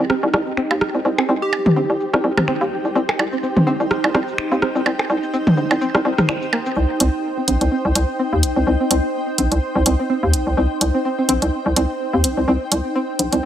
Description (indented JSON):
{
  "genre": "minimal techno",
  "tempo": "126 BPM",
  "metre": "4/4",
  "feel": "swing 56% on 16ths",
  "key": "C minor",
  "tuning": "A4 = 440 Hz",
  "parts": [
    { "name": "string-like resonator pluck", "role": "riff", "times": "0.0-13.5 s", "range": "Bb3 to C4", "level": "-23 LUFS", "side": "equal", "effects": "chorus, tape echo" },
    { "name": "hollow knocking FM bass", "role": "bass", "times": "0.0-13.4 s", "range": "Bb1 to Eb2", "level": "-18 LUFS", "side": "equal", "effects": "high-pass filter" },
    { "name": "flickering grainy texture", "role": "texture", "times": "0.0-6.8 s", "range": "G4", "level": "-30 LUFS", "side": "equal", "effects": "built-in reverb" },
    { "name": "granular cloud pad", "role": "texture", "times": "0.0-13.5 s", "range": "Eb4 to G5", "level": "-24 LUFS", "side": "equal", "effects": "built-in reverb" },
    { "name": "punchy analog drum machine", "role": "drums", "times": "0.1-13.4 s", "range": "finger snaps, hi-hat, shaker", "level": "-22 LUFS", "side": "right 1 dB", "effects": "high-pass filter on hats, low-pass filter on hats, high-pass filter on snare, low-pass filter on snare, high-pass filter on perc, low-pass filter on perc" },
    { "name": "minimal click drum kit", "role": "percussion", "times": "0.1-6.6 s", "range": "percussion blips, rim click, toms", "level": "-20 LUFS", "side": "right 1 dB", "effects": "tape echo" },
    { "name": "plucky unison lead", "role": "melody", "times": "1.4-2.1 s", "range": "G4", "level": "-23 LUFS", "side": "equal", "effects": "phaser, tape echo" }
  ],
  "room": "light reverb, digital ambience",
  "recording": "high-pass filter",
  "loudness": "-16 LUFS",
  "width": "side -11 dB against mid",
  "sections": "0.0-6.8 A section; 6.8-13.5 B section",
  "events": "filter sweep on synth pluck 0.0-6.8, 6.8-13.5; build-up 6.8-13.5",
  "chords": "0.0 Cm"
}